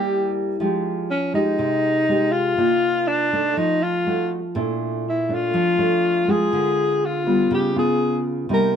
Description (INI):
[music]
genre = bossa nova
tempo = 121 BPM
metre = 4/4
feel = straight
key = F minor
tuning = A4 = 440 Hz
[part]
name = breathy alto saxophone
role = melody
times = 0.0-8.8 s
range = Db4 to Bb4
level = -20 LUFS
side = left 2 dB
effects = none
[part]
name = nylon-string guitar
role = accompaniment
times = 0.0-8.8 s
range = Bb2 to G4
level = -22 LUFS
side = right 1 dB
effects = none
[sound]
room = light reverb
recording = close, detailed microphones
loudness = -18 LUFS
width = side -8 dB against mid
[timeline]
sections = 0.6-8.8 A section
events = none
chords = 0.0 C7 (rootless); 0.6 Fm9; 2.6 Cm11; 3.6 F7b9; 4.6 Bbmaj9#11; 6.5 Dm7b5; 7.5 Db7#11